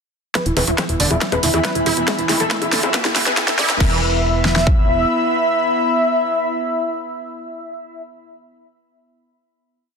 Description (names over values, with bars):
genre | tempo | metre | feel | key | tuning
psychedelic trance | 139 BPM | 4/4 | straight | unclear | A4 = 440 Hz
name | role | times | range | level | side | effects
wide unison lead | melody | 0.4-8.0 s | E4 to E5 | -21 LUFS | equal | phaser, sidechain pumping, digital delay
evolving wavetable pad | sustained chords | 0.9-3.8 s | E3 to E4 | -28 LUFS | left 2 dB | phaser, built-in reverb, sidechain pumping
screaming distorted acid line | riff | 0.4-4.0 s | D3 to E4 | -25 LUFS | right 2 dB | distortion, chorus, auto-pan, sidechain pumping, dub echo
big-room dance drum kit | drums | 0.4-4.8 s | kick drum, snare drum | -17 LUFS | equal | overdrive, high-pass filter on kick, high-pass filter on snare
big-room dance drum kit | drums | 0.4-3.9 s | bongos, crash cymbal, hi-hat, snare drum | -20 LUFS | left 1 dB | overdrive
riser | sound effects | 1.8-3.8 s | none | -28 LUFS | right 1 dB | none
airy breathy pad | texture | 0.4-8.0 s | B3 to B5 | -23 LUFS | left 1 dB | chorus, sidechain pumping
tight sequencer bass | bass | 0.5-5.1 s | E1 to E2 | -23 LUFS | equal | none
room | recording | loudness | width
moderate digital room reverb, RT60 1.1 s, digital ambience | dense, heavily limited modern master, high-pass filter | -15 LUFS | side -5 dB against mid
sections
0.4-3.8 build; 3.8-7.3 final chord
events
build-up 0.4-3.8; drum fill 0.4-3.8; filter sweep on acid bass 0.4-3.8; filter sweep 0.4-3.8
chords
0.4 E5